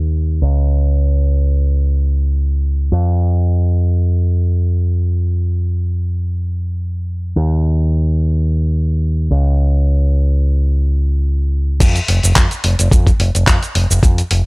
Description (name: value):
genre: nu-disco, nu disco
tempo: 108 BPM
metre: 4/4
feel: swing 54% on 16ths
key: unclear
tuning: A4 = 444 Hz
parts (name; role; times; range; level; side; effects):
- picked electric bass with an envelope filter; bass; 0.0-14.4 s; F1 to F2; -13 LUFS; equal; none
- dusty soul sampler-style drum kit; drums; 11.8-14.4 s; cabasa, crash cymbal, handclaps, hi-hat; -18 LUFS; equal; none
- electronic kick drum; drums; 11.8-14.2 s; none; -12 LUFS; equal; none
room: digital ambience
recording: none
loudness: -13 LUFS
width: side -32 dB against mid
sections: 0.0-11.8 A section; 11.8-14.5 B section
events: drop 11.8-14.5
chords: none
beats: 0.14 | 0.70 1.25 1.81 2.36 | 2.92 3.48 4.03 4.59 | 5.14 5.70 6.25 6.81 | 7.36 7.92 8.47 9.03 | 9.59 10.14 10.70 11.25 | 11.81 12.36 12.92 13.47 | 14.03